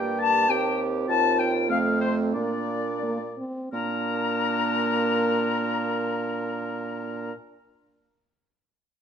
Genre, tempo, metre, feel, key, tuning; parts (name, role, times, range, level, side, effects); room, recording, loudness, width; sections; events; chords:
quick classical-period movement for wind quintet; 84-102 BPM; 2/4; straight; Bb major; A4 = 439 Hz
warm oboe; second line; 0.0-7.3 s; Bb4 to A5; -31 LUFS; left 3 dB
dark clarinet; accompaniment; 0.0-7.3 s; C4 to G4; -32 LUFS; right 11 dB
mellow French horn; accompaniment; 0.0-7.3 s; A3 to C4; -30 LUFS; equal
warm bassoon; bass; 0.0-7.3 s; Eb2 to Bb2; -29 LUFS; right 2 dB
silver concert flute; melody; 0.2-7.3 s; C5 to Bb5; -28 LUFS; left 7 dB
moderate recital hall reverb, RT60 1.4 s; -23 LUFS; side -8 dB against mid
0.0-3.7 A section; 3.7-6.6 B section
slowing down 0.5-3.7
0.5 Cm/Eb; 1.1 F7/Eb; 1.7 F; 2.3 Bb